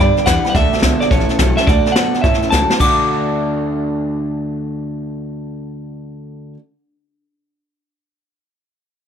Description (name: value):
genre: rockabilly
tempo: 212 BPM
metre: 4/4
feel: swing 65% on 8ths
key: D major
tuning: A4 = 440 Hz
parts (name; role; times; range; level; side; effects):
- electric guitar through a small old amp; melody; 0.0-6.5 s; C#5 to D6; -18 LUFS; right 1 dB; tape echo
- dark upright piano; accompaniment; 0.0-6.5 s; C#5 to B5; -28 LUFS; right 6 dB; plate reverb
- picked steel-string acoustic guitar; accompaniment; 0.0-6.6 s; A2 to B4; -25 LUFS; left 5 dB; none
- electric guitar through a small old amp; riff; 0.0-6.6 s; G2 to F#4; -22 LUFS; right 2 dB; none
- upright bass; bass; 0.0-6.5 s; A1 to A2; -22 LUFS; equal; none
- jazz brush drum kit; drums; 0.0-2.9 s; crash cymbal, hi-hat, kick drum, snare drum; -17 LUFS; left 1 dB; none
room: light reverb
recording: none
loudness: -13 LUFS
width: side -8 dB against mid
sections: 0.0-1.7 A section; 1.7-2.8 B section; 2.8-5.1 C section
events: drum fill 1.5, 2.5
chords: 0.0 G; 0.6 D; 1.1 A; 1.7 D; 2.2 A; 2.8 D